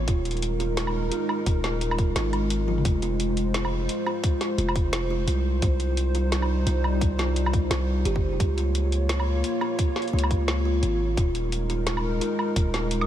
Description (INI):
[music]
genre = half-time drum and bass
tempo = 173 BPM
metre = 4/4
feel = swing 59% on 16ths, half-time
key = unclear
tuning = A4 = 439 Hz
[part]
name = dark analog pad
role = sustained chords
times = 0.0-13.1 s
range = G3 to Db5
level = -29 LUFS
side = left 1 dB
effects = chorus, sidechain pumping
[part]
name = long sustained 808-style bass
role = bass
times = 0.0-13.1 s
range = Eb1 to Db2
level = -26 LUFS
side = equal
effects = none
[part]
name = kalimba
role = arpeggios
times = 0.1-12.9 s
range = F4 to G4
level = -31 LUFS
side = right 3 dB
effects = diffuse ambient delay
[part]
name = drum and bass drum kit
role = drums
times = 0.1-13.1 s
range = hi-hat, snare drum, toms, woodblock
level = -31 LUFS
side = equal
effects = none
[part]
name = electronic kick drum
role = drums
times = 0.1-12.6 s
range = none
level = -24 LUFS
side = equal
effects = none
[sound]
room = light reverb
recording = none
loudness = -22 LUFS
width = side -11 dB against mid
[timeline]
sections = 0.0-13.1 A section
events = drum fill 2.7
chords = 0.1 Ebsus4; 2.9 Fm; 5.6 Cm; 8.4 Db6; 11.2 Ebsus4